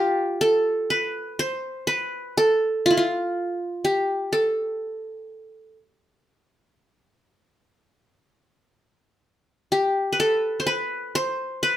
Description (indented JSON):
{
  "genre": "arabic",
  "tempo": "123 BPM (eighths)",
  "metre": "10/8",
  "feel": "straight",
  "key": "unclear",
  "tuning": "A4 = 440 Hz",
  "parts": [
    { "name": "qanun", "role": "solo", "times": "0.0-11.8 s", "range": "E4 to C5", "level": "-21 LUFS", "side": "equal", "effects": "none" }
  ],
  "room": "moderate studio reverb, RT60 0.6 s",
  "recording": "none",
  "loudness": "-21 LUFS",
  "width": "side -12 dB against mid",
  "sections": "0.0-11.8 A section",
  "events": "none",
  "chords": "none"
}